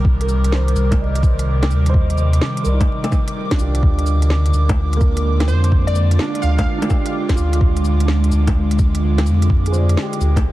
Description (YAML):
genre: future garage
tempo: 127 BPM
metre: 4/4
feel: swing 66% on 16ths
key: unclear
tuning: A4 = 440 Hz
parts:
  - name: dark upright piano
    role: accompaniment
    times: 0.0-10.5 s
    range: Bb3 to Eb5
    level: -26 LUFS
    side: right 4 dB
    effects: sidechain pumping, tape echo
  - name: airy breathy pad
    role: sustained chords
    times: 0.0-10.5 s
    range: C3 to D6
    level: -23 LUFS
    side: equal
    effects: chorus, phaser, vintage 12-bit sampler grit, sidechain pumping
  - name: warm sub bass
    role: bass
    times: 0.0-10.5 s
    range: Ab1 to F2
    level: -16 LUFS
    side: equal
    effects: sidechain pumping
  - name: electronic kick drum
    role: drums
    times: 0.0-10.4 s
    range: none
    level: -17 LUFS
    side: equal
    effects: none
  - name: organic electronic drum kit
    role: drums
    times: 0.2-10.4 s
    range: bongos, cabasa, hi-hat, snare drum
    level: -25 LUFS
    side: left 1 dB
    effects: none
  - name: glassy wavetable pluck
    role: melody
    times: 5.5-6.6 s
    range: C5 to F5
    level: -27 LUFS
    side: left 1 dB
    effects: chorus, cassette tape, tape echo
room: light reverb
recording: dense, heavily limited modern master, vinyl crackle, lossy compression artefacts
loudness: -14 LUFS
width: side -16 dB against mid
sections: 0.0-10.5 A section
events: none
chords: 0.0 Cm7; 3.8 Ddim